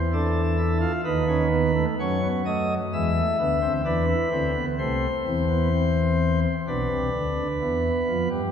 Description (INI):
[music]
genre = classical, baroque-style 3-part fugue for pipe organ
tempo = 64 BPM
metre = 4/4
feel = straight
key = unclear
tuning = A4 = 440 Hz
[part]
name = pipe organ, sparkling flutes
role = solo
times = 0.0-8.5 s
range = B1 to E5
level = -21 LUFS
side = equal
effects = none
[sound]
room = wet church reverb, RT60 2.8 s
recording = none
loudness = -21 LUFS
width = side -8 dB against mid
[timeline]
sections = 0.0-6.7 A section; 6.7-8.5 B section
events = none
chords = 0.0 A5; 1.0 B7/D#; 2.9 E7; 4.8 Am/C; 6.7 G7/B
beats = 0.11 1.04 1.97 | 2.91 3.85 4.78 5.71 | 6.65 7.59